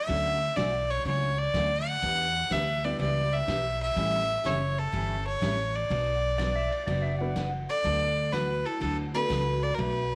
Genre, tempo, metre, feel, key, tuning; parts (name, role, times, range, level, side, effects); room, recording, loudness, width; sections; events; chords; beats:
country, western swing; 124 BPM; 4/4; swing 68% on 8ths; D major; A4 = 441 Hz
clear fiddle; melody; 0.0-10.2 s; A4 to F#5; -30 LUFS; equal
honky-tonk upright piano; accompaniment; 0.1-4.3, 7.2-9.8 s; F#3 to B4; -40 LUFS; equal
picked steel-string acoustic guitar; accompaniment; 0.1-10.0 s; B2 to A4; -40 LUFS; equal
upright bass; bass; 0.1-10.2 s; F#1 to E2; -34 LUFS; equal
vintage drum kit; drums; 0.1-9.9 s; hi-hat, kick drum, ride cymbal, snare drum; -43 LUFS; equal
clean lap steel guitar; second line; 6.4-7.5 s; D5 to F#5; -39 LUFS; equal
vibraphone with soft mallets; second line; 7.7-10.2 s; D4 to A4; -39 LUFS; equal
light reverb, small room ambience; -28 LUFS; mono
0.0-10.2 A section
0.1 Dmaj7; 2.0 Em7; 4.0 A7; 5.9 Bm; 7.8 D6
| 0.08 0.57 1.05 1.54 | 2.02 2.51 2.99 3.48 | 3.96 4.45 4.93 5.42 | 5.90 6.39 6.87 7.36 | 7.84 8.33 8.81 9.30 | 9.79